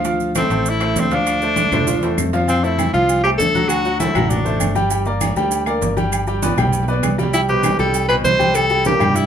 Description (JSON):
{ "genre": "latin, salsa", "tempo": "198 BPM", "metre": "4/4", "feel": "straight", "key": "D minor", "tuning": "A4 = 440 Hz", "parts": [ { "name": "clear concert grand piano", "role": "accompaniment", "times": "0.0-9.3 s", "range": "B2 to G5", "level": "-21 LUFS", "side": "left 1 dB", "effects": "none" }, { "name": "picked electric bass", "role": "bass", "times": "0.0-9.3 s", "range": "G1 to G2", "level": "-22 LUFS", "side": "equal", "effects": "none" }, { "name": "congas", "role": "percussion", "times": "0.0-9.3 s", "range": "none", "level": "-24 LUFS", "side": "equal", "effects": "none" }, { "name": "maracas", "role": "percussion", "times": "0.0-9.3 s", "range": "none", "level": "-29 LUFS", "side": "right 9 dB", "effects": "none" }, { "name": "timbales and agogo bells", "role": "percussion", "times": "0.0-9.3 s", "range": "none", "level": "-27 LUFS", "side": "right 7 dB", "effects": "none" }, { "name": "clear tenor saxophone", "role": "melody", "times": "0.4-4.8, 7.3-9.3 s", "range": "C4 to C5", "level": "-18 LUFS", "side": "equal", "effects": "none" }, { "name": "claves", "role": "percussion", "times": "0.4-9.2 s", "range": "none", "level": "-30 LUFS", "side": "left 7 dB", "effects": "none" } ], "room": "wet studio ambience, RT60 0.5 s", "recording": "band playing live in one room", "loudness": "-15 LUFS", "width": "side -8 dB against mid", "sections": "0.0-2.5 A section; 2.5-9.3 B section", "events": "drum fill 1.7-2.5, 6.4-7.3", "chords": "0.0 Dm7; 2.5 Fmaj7; 3.7 D7; 4.9 Gm; 6.1 G; 7.3 C5; 8.6 C7(no3)" }